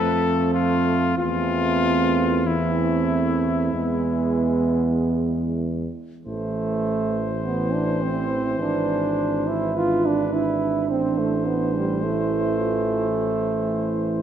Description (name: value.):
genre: classical, hymn-like piece for brass band.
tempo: 46-54 BPM.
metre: 4/4.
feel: rubato.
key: A minor.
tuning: A4 = 440 Hz.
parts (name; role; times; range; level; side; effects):
warm cornet; melody; 0.0-14.2 s; E4 to C5; -27 LUFS; left 6 dB; none.
mellow French horn section; second line; 0.0-14.2 s; B3 to B4; -25 LUFS; right 6 dB; none.
bright trombone section; accompaniment; 0.0-14.2 s; E3 to A3; -31 LUFS; left 1 dB; none.
warm trombone; accompaniment; 0.0-14.2 s; E3 to F4; -26 LUFS; right 3 dB; none.
mellow tuba; bass; 0.0-14.2 s; G#1 to F2; -26 LUFS; equal; none.
room: wet concert hall reverb, RT60 1.7 s.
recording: dark, warm production.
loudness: -20 LUFS.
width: side -9 dB against mid.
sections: 0.0-6.3 A section; 6.3-14.2 B section.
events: none.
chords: 0.0 Dm7 (rootless); 1.2 Am/E; 3.7 E; 6.3 Am; 8.6 E7/G#; 10.9 Am.